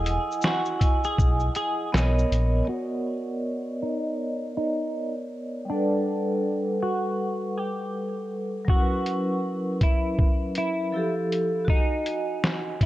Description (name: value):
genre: lo-fi hip hop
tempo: 80 BPM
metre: 4/4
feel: swing 62% on 16ths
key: B major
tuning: A4 = 439 Hz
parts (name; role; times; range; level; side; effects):
- semi-hollow electric guitar; melody; 0.0-12.9 s; D4 to G#4; -30 LUFS; equal; analog chorus, low-pass filter
- vibraphone with medium hard mallets; accompaniment; 0.0-12.9 s; F3 to G#5; -28 LUFS; equal; cassette tape, low-pass filter
- sub bass with octave; bass; 0.0-2.6 s; E1 to B1; -23 LUFS; equal; none
- lo-fi sampler-style drum kit; drums; 0.1-2.5, 8.7-12.9 s; handclaps, hi-hat, kick drum, shaker, snare drum; -23 LUFS; equal; none
room: moderate spring reverb, RT60 2.5 s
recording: cassette tape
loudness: -23 LUFS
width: side -15 dB against mid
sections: 0.0-2.7 A section; 2.7-12.9 B section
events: filter sweep 2.7-12.9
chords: 0.0 Emaj9; 1.9 Bmaj9; 5.7 Gmaj9; 8.7 F#7sus4; 10.9 Fmaj9; 11.7 Emaj9 (rootless)